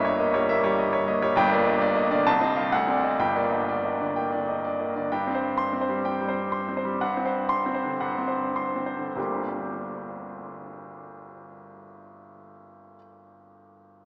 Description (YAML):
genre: classical, virtuoso piano study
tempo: 98-138 BPM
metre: 4/4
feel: rubato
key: G minor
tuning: A4 = 440 Hz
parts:
  - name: bright grand piano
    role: solo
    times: 0.0-14.1 s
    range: G1 to C6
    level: -26 LUFS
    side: equal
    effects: none
room: wet cathedral reverb, RT60 6.1 s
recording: in a vast, echoing space, small speaker sound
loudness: -25 LUFS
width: mono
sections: 0.0-5.1 A section; 5.1-9.2 B section; 9.2-13.8 C section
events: slowing down 4.2-9.2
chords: 0.0 Gdim7; 1.4 Gm; 2.3 Adim/C; 2.7 D7; 3.2 Gm; 5.1 C5/G; 7.0 D7/G; 9.2 Gm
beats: 0.04 0.49 0.92 | 1.37 1.81 2.26 2.72 | 3.19 3.68 4.16 4.63 | 5.11 5.57 6.05 6.52 | 7.00 7.50 8.01 8.56 | 9.16 9.75 10.32 10.90 | 11.47 12.05 12.64 13.22